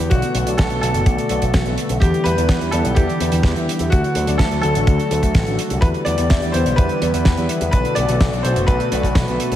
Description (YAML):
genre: italo disco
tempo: 126 BPM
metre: 4/4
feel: straight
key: E minor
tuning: A4 = 439 Hz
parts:
  - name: bright grand piano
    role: melody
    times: 0.0-9.6 s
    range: F#4 to D5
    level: -23 LUFS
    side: left 1 dB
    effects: ping-pong delay
  - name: warm analog pad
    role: sustained chords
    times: 0.0-9.6 s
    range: D3 to A4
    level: -24 LUFS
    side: equal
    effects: chorus
  - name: analog synth brass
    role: stabs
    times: 0.0-9.6 s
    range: B2 to E5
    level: -25 LUFS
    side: left 2 dB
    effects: chorus
  - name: picked electric bass with an envelope filter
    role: bass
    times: 0.0-9.6 s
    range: F#1 to E2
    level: -22 LUFS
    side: equal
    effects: tube saturation
  - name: damped 70s drum kit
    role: drums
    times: 0.1-9.6 s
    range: hi-hat, snare drum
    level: -25 LUFS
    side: right 1 dB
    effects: none
  - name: kick drum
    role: drums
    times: 0.1-9.3 s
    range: none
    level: -16 LUFS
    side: equal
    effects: none
room: moderate lush hall reverb, RT60 1.7 s, studio ambience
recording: dreamy mix soaked in reverb, vinyl crackle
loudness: -15 LUFS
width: side -12 dB against mid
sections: 0.0-9.6 A section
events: none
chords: 0.1 Bm7; 2.0 Em7; 3.9 D; 5.8 Em7; 7.7 Bm7